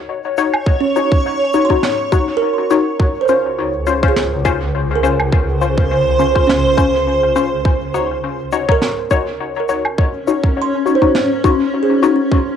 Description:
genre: ambient dub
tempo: 103 BPM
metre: 4/4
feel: swing 55% on 16ths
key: Eb dorian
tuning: A4 = 440 Hz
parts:
  - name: granular cloud pad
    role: sustained chords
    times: 0.5-12.6 s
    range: Db2 to Db5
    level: -18 LUFS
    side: right 1 dB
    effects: built-in reverb, cassette tape
  - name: filtered dub chord stab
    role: stabs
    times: 0.4-12.2 s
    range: Db4 to Db5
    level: -18 LUFS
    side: left 7 dB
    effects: phaser, analog chorus, cassette tape, dub echo, plate reverb
  - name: shaker, woodblock and snare drum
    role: drums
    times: 0.4-12.2 s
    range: none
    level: -23 LUFS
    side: right 2 dB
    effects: dub echo
  - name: electronic kick drum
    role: drums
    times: 0.7-12.4 s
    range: none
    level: -16 LUFS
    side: right 1 dB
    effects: overdrive
  - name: kalimba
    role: arpeggios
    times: 0.8-12.6 s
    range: Db4 to C6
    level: -22 LUFS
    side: right 8 dB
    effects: vintage 12-bit sampler grit, cassette tape, dub echo, plate reverb
room: moderate studio ambience, RT60 0.5 s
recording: home recording on cassette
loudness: -13 LUFS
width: side -8 dB against mid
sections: 0.0-12.6 A section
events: none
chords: 0.0 Ebm7; 3.0 Dbmaj7; 7.7 Ebm7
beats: 0.08 | 0.67 1.25 1.83 2.41 | 3.00 3.58 4.16 4.74 | 5.33 5.91 6.49 7.07 | 7.66 8.24 8.82 9.40 | 9.99 10.57 11.15 11.73 | 12.32

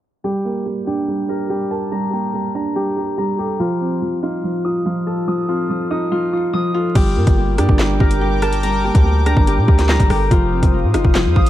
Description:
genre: hip hop, drill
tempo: 143 BPM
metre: 4/4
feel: half-time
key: G minor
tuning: A4 = 440 Hz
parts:
  - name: dark concert grand piano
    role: accompaniment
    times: 0.2-11.5 s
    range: F3 to Bb4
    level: -21 LUFS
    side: right 3 dB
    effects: none
  - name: Celtic harp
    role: arpeggios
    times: 0.2-11.5 s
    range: F4 to Eb6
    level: -22 LUFS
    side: left 5 dB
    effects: ping-pong delay
  - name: sweeping resonant pad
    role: sustained chords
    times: 7.3-11.5 s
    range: Bb4 to Eb6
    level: -27 LUFS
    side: right 3 dB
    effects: chorus
  - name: hard-hitting 808-style bass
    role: bass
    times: 7.0-11.5 s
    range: F1 to Bb2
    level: -17 LUFS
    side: equal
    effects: none
  - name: drill drum kit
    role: drums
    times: 7.0-11.5 s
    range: crash cymbal, handclaps, hi-hat, kick drum, rim click, snare drum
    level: -15 LUFS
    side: equal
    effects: none
room: light reverb, digital ambience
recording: dark, warm production, vinyl crackle, low-pass filter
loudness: -15 LUFS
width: side -13 dB against mid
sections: 0.2-7.0 A section; 7.0-11.5 B section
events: filter sweep 0.2-7.0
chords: 0.2 Gmadd9; 3.6 F7; 7.0 Gmadd9; 10.3 F7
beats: | 0.24 0.66 1.08 1.50 | 1.92 2.34 2.76 3.18 | 3.60 4.02 4.44 4.86 | 5.28 5.70 6.12 6.54 | 6.95 7.37 7.79 8.21 | 8.63 9.05 9.47 9.89 | 10.31 10.73 11.15

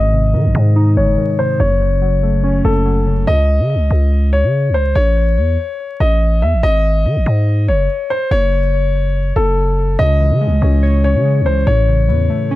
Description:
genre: hip hop, drill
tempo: 143 BPM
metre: 4/4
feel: half-time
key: C# harmonic minor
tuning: A4 = 442 Hz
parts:
  - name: dark grand piano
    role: melody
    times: 0.0-12.6 s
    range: A4 to E5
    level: -18 LUFS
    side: left 2 dB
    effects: low-pass filter, ping-pong delay
  - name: warbly lo-fi synth keys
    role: accompaniment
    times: 0.0-3.3, 10.0-12.6 s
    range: F#2 to C#5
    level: -17 LUFS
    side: equal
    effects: chorus, low-pass filter
  - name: growling 808-style bass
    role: bass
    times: 0.0-12.3 s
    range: F#1 to D#3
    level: -14 LUFS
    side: equal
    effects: none
room: small room ambience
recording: dark, warm production, vinyl crackle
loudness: -12 LUFS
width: side -16 dB against mid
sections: 0.0-12.6 A section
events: filter sweep 0.0-3.3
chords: 0.0 G#; 1.6 F#m; 3.3 C#sus2; 5.0 A; 6.6 G#5; 8.3 F#m; 10.0 C#m; 11.7 A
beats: 0.34 0.76 1.18 | 1.60 2.02 2.44 2.86 | 3.28 3.70 4.12 4.54 | 4.96 5.37 5.79 6.21 | 6.63 7.05 7.47 7.89 | 8.31 8.73 9.15 9.57 | 9.99 10.41 10.83 11.25 | 11.67 12.09 12.51

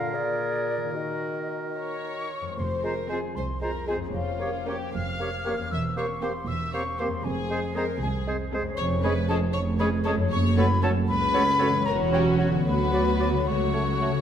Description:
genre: cinematic, playful, whimsical film cue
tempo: 71-79 BPM (dotted quarters)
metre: 6/8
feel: straight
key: F minor, F# minor from 8.8 s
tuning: A4 = 441 Hz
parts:
  - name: clear clarinet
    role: second line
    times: 0.0-14.1 s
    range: F4 to A4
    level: -37 LUFS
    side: left 1 dB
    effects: none
  - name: clear oboe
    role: second line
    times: 0.0-14.1 s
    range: Bb4 to D5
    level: -37 LUFS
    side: right 2 dB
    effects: none
  - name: concert flute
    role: second line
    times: 0.0-14.2 s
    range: D5 to F6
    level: -31 LUFS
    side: left 2 dB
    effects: none
  - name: warm bassoon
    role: accompaniment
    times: 0.0-14.1 s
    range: Bb2 to Bb3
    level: -35 LUFS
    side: right 2 dB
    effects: none
  - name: concert harp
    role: arpeggios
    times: 0.0-14.2 s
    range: E2 to Bb4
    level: -32 LUFS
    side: left 7 dB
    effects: none
  - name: warm studio violin section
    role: second line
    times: 1.8-14.2 s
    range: F4 to F5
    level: -36 LUFS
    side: left 2 dB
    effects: none
  - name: warm studio cello section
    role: bass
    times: 2.6-14.2 s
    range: C2 to F#2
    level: -29 LUFS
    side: right 2 dB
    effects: none
  - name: warm symphonic double bass section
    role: bass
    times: 2.6-14.2 s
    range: E1 to D2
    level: -30 LUFS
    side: right 3 dB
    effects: none
  - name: dark French horn section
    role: sustained chords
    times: 2.8-14.1 s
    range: A3 to Bb4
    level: -37 LUFS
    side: left 1 dB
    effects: none
  - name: dark studio violin section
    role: melody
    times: 3.1-14.2 s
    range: F#4 to Ab4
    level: -36 LUFS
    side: left 3 dB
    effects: none
  - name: warm studio viola section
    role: accompaniment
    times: 3.1-14.2 s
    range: F#3 to Ab4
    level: -32 LUFS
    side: right 2 dB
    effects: none
room: wet scoring stage reverb, RT60 1.9 s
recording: none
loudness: -23 LUFS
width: side -9 dB against mid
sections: 0.0-2.6 A section; 2.6-14.2 B section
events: none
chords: 0.1 Bb7; 0.9 Ebm; 2.6 Fm; 4.1 Gm7b5/F; 5.7 C7/E; 7.3 Fm; 8.8 C#/E#; 10.3 F#m; 11.9 F#5/E; 12.7 Bm/D; 13.5 F#m/C#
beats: 0.14 | 0.94 1.78 | 2.59 3.37 | 4.14 4.94 | 5.72 6.49 | 7.25 8.02 | 8.79 9.55 | 10.31 11.08 | 11.86 12.66 | 13.47

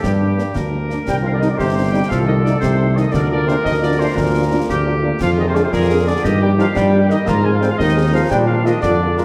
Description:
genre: military-style march for wind band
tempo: 116 BPM (dotted quarters)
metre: 6/8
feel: straight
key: Bb major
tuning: A4 = 440 Hz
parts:
  - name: dark trumpet section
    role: melody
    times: 0.0-9.2 s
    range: G4 to Bb5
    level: -26 LUFS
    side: equal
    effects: none
  - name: clear euphonium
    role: second line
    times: 0.0-9.2 s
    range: G2 to Bb3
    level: -24 LUFS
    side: equal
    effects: none
  - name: warm woodwind section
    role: second line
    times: 0.0-9.2 s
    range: D4 to Bb4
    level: -27 LUFS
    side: equal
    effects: none
  - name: mellow tuba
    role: bass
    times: 0.0-9.2 s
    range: G1 to Bb2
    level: -20 LUFS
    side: equal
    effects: none
  - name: concert snare drum, concert bass drum and clash cymbals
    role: drums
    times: 0.0-9.2 s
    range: none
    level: -29 LUFS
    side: equal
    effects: none
  - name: dark French horn section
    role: accompaniment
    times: 0.2-9.2 s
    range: G3 to Ab4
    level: -28 LUFS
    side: equal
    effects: none
  - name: dark trombone section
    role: sustained chords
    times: 0.4-9.2 s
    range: G3 to F4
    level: -28 LUFS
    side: equal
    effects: none
room: wet recital hall reverb, RT60 1.5 s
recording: none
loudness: -16 LUFS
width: mono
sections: 0.0-9.2 A section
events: none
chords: 0.0 Gm; 1.1 Cm; 2.1 Adim/C; 3.1 Bb/D; 5.2 Bb7/F; 6.2 Eb/G; 7.3 Ab; 8.3 Bb7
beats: | 0.03 0.55 | 1.07 1.59 | 2.10 2.62 | 3.14 3.65 | 4.17 4.69 | 5.21 5.72 | 6.24 6.76 | 7.28 7.79 | 8.31 8.83

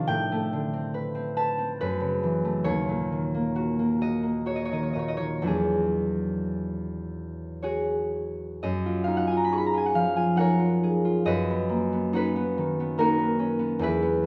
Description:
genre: classical, solo harp piece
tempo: 52-73 BPM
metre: 3/4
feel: rubato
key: unclear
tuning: A4 = 440 Hz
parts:
  - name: concert harp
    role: solo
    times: 0.0-14.3 s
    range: D#2 to C#6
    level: -26 LUFS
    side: equal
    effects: none
room: moderate recital hall reverb, RT60 1.5 s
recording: none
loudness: -26 LUFS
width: mono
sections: 0.0-8.6 A section; 8.6-14.3 A section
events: none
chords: 0.1 Am11; 1.8 F#m7; 2.6 D#m7; 5.5 E9; 8.6 F#maj9; 11.3 Badd9/F#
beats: | 0.08 0.94 1.79 | 2.65 3.54 4.45 | 5.46 6.51 7.62 | 8.63 9.53 10.40 | 11.28 12.15 13.00 | 13.83

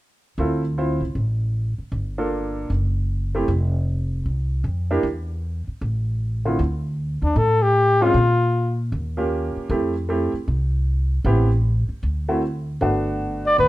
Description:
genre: jazz, small-group swing and bop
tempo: 154 BPM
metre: 4/4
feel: swing 64% on 8ths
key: D minor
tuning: A4 = 444 Hz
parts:
  - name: clear upright piano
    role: accompaniment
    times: 0.4-13.7 s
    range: D3 to C5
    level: -23 LUFS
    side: right 1 dB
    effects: none
  - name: upright bass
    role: bass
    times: 0.4-13.7 s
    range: F1 to Bb2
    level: -22 LUFS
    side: equal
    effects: none
  - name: warm flugelhorn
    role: melody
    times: 7.2-8.8, 13.5-13.7 s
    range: D4 to D5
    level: -17 LUFS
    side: left 2 dB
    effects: none
room: light reverb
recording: minimal, uncompressed stereo recording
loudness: -20 LUFS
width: side -16 dB against mid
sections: 0.4-6.6 A section; 6.6-13.7 B section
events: none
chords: 0.4 Dm7; 1.9 Gm7; 2.7 F#m7b5; 3.5 F5; 5.0 N.C.; 5.8 A5; 6.6 D5; 8.1 Bb5; 8.9 Eb9; 9.7 Fmaj7; 11.3 Am9; 12.0 D9; 12.8 Gmaj7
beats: | 0.38 0.77 1.16 1.55 | 1.94 2.32 2.71 3.10 | 3.49 3.88 4.26 4.65 | 5.04 5.43 5.82 6.21 | 6.59 6.98 7.37 7.76 | 8.15 8.54 8.92 9.31 | 9.70 10.09 10.48 10.87 | 11.25 11.64 12.03 12.42 | 12.81 13.20 13.59

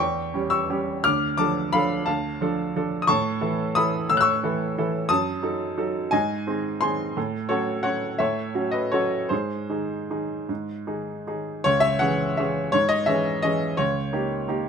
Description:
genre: classical, piano waltz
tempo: 146-188 BPM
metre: 3/4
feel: rubato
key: C# minor from 3.1 s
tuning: A4 = 441 Hz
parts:
  - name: clear baby grand piano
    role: solo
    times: 0.0-14.7 s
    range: C#2 to F#6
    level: -22 LUFS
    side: equal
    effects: none
room: light reverb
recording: none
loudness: -22 LUFS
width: side -6 dB against mid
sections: 0.0-11.6 A section; 11.6-14.7 B section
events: none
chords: 0.0 C#dim/E; 1.0 Dm; 3.1 A; 5.1 D#dim/F#; 6.1 G#; 7.2 F#m/A; 9.3 G#; 11.6 C#m; 13.8 D#7/C#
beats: 0.33 0.69 | 1.04 1.39 1.73 | 2.07 2.40 2.75 | 3.08 3.41 3.76 | 4.10 4.44 4.78 | 5.11 5.44 5.79 | 6.13 6.47 6.82 | 7.17 7.50 7.85 | 8.20 8.55 8.93 | 9.31 9.70 10.11 | 10.49 10.88 11.27 | 11.64 12.00 12.37 | 12.72 13.07 13.43 | 13.78 14.12 14.47

